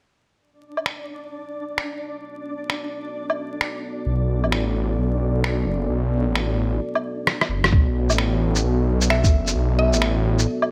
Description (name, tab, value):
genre	future garage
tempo	131 BPM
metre	4/4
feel	swing 62% on 16ths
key	B minor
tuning	A4 = 440 Hz
part	dark analog pad	sustained chords	0.4-10.7 s	B3 to D5	-30 LUFS	equal	chorus, sidechain pumping
part	flickering grainy texture	texture	0.7-7.7 s	D4 to D5	-36 LUFS	equal	built-in reverb
part	electronic woodblock, finger snaps, rim click and shaker	drums	0.8-10.7 s	none	-26 LUFS	equal	studio reverb
part	swelling detuned saw bass	bass	4.1-10.5 s	F#1 to B1	-23 LUFS	equal	sidechain pumping
part	electronic kick drum	drums	7.7-9.3 s	none	-18 LUFS	equal	studio reverb
part	mallet-like synth pluck	melody	9.1-10.0 s	E5	-28 LUFS	equal	chorus, digital delay
room	light reverb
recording	vinyl crackle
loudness	-22 LUFS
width	mono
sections	0.4-7.7 A section; 7.7-10.7 B section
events	fade-in on analog synth pad 0.4-7.7; drum fill 7.3-7.7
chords	0.4 Bm7